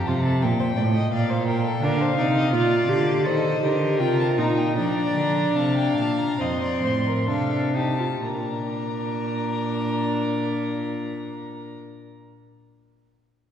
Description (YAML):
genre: classical, baroque-style fugue for string quartet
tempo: 62-87 BPM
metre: 4/4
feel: straight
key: Bb major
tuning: A4 = 441 Hz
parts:
  - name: dark violin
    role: melody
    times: 0.0-11.8 s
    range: Eb5 to C6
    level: -30 LUFS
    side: left 4 dB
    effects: none
  - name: dark violin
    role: second line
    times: 0.0-11.8 s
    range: F4 to F5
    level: -31 LUFS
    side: left 2 dB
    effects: none
  - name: rich cello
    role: bass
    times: 0.0-11.8 s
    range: F2 to F3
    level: -25 LUFS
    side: right 2 dB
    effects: none
  - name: warm viola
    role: accompaniment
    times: 1.8-11.8 s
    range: C4 to A4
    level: -25 LUFS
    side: equal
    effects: none
room: wet concert hall reverb, RT60 2.3 s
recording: heard from further back in the room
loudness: -21 LUFS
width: side -9 dB against mid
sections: 0.0-8.2 A section; 8.2-12.1 B section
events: slowing down 0.4-8.2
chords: 0.4 Bb; 3.2 Eb; 4.8 Bb; 6.4 F7; 8.2 Bb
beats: 0.43 1.12 | 1.82 2.52 3.25 3.99 | 4.76 5.56 6.40 7.29 | 8.23 9.19 10.16 11.12